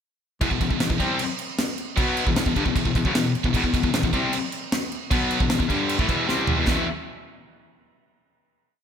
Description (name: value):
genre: heavy metal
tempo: 153 BPM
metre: 4/4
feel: straight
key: E minor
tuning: A4 = 440 Hz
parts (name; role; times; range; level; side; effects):
- heavy high-gain guitar; riff; 0.4-6.8 s; E2 to C4; -25 LUFS; left 7 dB; distortion, slapback echo
- heavy high-gain guitar; riff; 0.4-6.8 s; E2 to C4; -28 LUFS; right 13 dB; distortion
- warm baritone saxophone; bass; 0.4-6.9 s; C2 to B2; -31 LUFS; right 1 dB; none
- modern studio drum kit; drums; 0.4-6.8 s; crash cymbal, kick drum, snare drum, toms; -25 LUFS; right 1 dB; none
room: moderate lush hall reverb, RT60 2.0 s, small room ambience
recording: big arena sound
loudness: -21 LUFS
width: side -8 dB against mid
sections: 0.4-6.7 riff; 6.7-8.2 final chord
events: drum fill 6.3-6.7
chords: 0.4 Em; 6.7 E5